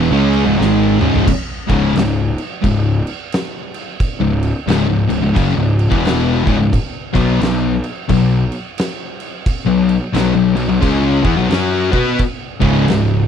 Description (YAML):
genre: stoner and doom metal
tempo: 88 BPM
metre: 4/4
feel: swing 62% on 8ths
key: C# minor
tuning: A4 = 440 Hz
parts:
  - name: distorted electric guitar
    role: riff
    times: 0.0-13.2 s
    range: C#2 to B4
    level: -19 LUFS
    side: equal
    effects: overdrive
  - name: thick fuzz guitar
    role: riff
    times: 0.0-13.2 s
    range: C#2 to B4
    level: -17 LUFS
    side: left 7 dB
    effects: distortion
  - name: thick fuzz guitar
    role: riff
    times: 0.0-1.3, 12.6-13.2 s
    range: C#2 to C#4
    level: -16 LUFS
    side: right 9 dB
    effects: distortion
  - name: fuzz picked electric bass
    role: bass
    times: 0.0-13.3 s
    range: C#1 to B2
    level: -19 LUFS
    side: right 1 dB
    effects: overdrive
  - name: oversized low-tuned drum kit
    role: drums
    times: 0.3-13.1 s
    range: crash cymbal, kick drum, snare drum, toms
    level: -21 LUFS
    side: right 1 dB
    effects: none
room: studio reverb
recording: dry, close 1970s-style studio recording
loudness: -13 LUFS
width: side -8 dB against mid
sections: 0.0-1.3 A section; 1.3-13.3 B section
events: drum fill 0.6-1.3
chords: 0.0 C#m; 7.1 B5; 12.5 C#5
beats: 0.59 | 1.27 1.95 2.63 3.31 | 3.99 4.68 5.36 6.04 | 6.72 7.41 8.09 8.78 | 9.46 10.14 10.83 11.51 | 12.19 12.88